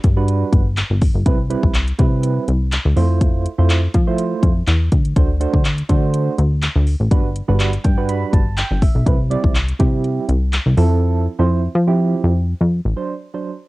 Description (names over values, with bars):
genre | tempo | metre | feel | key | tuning
dance-pop | 123 BPM | 4/4 | straight | G major | A4 = 440 Hz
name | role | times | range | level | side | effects
plucky analog bass | bass | 0.0-12.9 s | G1 to F3 | -17 LUFS | left 1 dB | sidechain pumping
house drum kit | drums | 0.0-10.9 s | handclaps, hi-hat, kick drum | -17 LUFS | left 1 dB | none
soft electric-piano-like synth keys | accompaniment | 0.2-13.5 s | F3 to B5 | -22 LUFS | right 5 dB | chorus, tremolo, sidechain pumping, cassette tape
room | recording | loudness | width
little or no reverb | home recording on cassette | -15 LUFS | side -19 dB against mid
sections
0.0-13.0 A section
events
synth keys fill 7.6-9.1; silent gap 11.0-13.0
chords
0.0 Gmaj7; 1.3 Cmaj7; 3.0 Fmaj7; 5.2 D7; 7.1 Gmaj7; 9.1 Cmaj7; 10.8 Fmaj7; 13.0 D7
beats
0.28 0.77 | 1.26 1.75 2.24 2.72 | 3.21 3.70 4.19 4.67 | 5.16 5.65 6.14 6.63 | 7.11 7.60 8.09 8.58 | 9.06 9.55 10.04 10.53 | 11.02 11.50 11.99 12.48 | 12.97 13.46